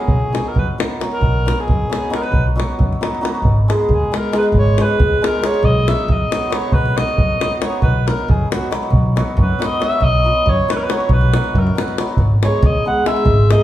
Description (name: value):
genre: balkan folk, Balkan wedding band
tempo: 274 BPM (eighths)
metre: 5/8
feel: straight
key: B major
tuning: A4 = 441 Hz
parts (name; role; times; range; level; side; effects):
- warm alto saxophone; melody; 0.0-13.6 s; F#4 to F#5; -20 LUFS; equal; none
- hammered dulcimer; accompaniment; 0.0-13.6 s; F#3 to G#4; -21 LUFS; equal; none
- upright bass; bass; 0.1-13.5 s; G#1 to F#2; -18 LUFS; equal; none
- davul; percussion; 0.1-13.6 s; none; -18 LUFS; equal; none
room: wet large studio reverb, RT60 1.3 s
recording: band playing live in one room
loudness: -14 LUFS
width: side -13 dB against mid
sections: 0.0-13.6 A section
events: speeding up 0.0-13.6; alto saxophone solo 0.0-13.6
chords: 0.0 B; 3.4 G#m; 5.6 B; 12.2 G#m